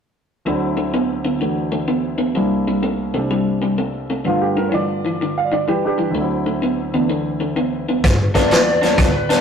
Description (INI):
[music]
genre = electric blues shuffle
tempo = 127 BPM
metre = 4/4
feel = swing 66% on 8ths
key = unclear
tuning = A4 = 444 Hz
[part]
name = warm concert grand piano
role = accompaniment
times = 0.5-8.1 s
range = C2 to D5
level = -22 LUFS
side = equal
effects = none
[part]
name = electric guitar through a small old amp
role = riff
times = 0.5-9.4 s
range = G2 to D4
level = -20 LUFS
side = left 1 dB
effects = spring reverb
[part]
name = clear upright piano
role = second line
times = 4.3-6.1 s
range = D4 to F5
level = -21 LUFS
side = right 4 dB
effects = none
[part]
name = upright bass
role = bass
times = 8.0-9.4 s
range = D2 to G2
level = -22 LUFS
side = equal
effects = none
[part]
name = vintage drum kit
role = drums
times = 8.0-9.4 s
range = hi-hat, kick drum, snare drum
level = -15 LUFS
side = equal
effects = none
[part]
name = lead guitar through a small cranked amp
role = melody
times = 8.4-9.4 s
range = B4 to D5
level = -20 LUFS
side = right 1 dB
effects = overdrive
[sound]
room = moderate stone room reverb, RT60 1.0 s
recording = rough rehearsal-room recording, warm saturation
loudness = -16 LUFS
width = side -7 dB against mid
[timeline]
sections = 0.5-8.0 A section; 8.0-9.4 B section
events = none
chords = 0.5 D7; 2.4 C7; 4.3 G7; 6.2 D7; 8.0 G7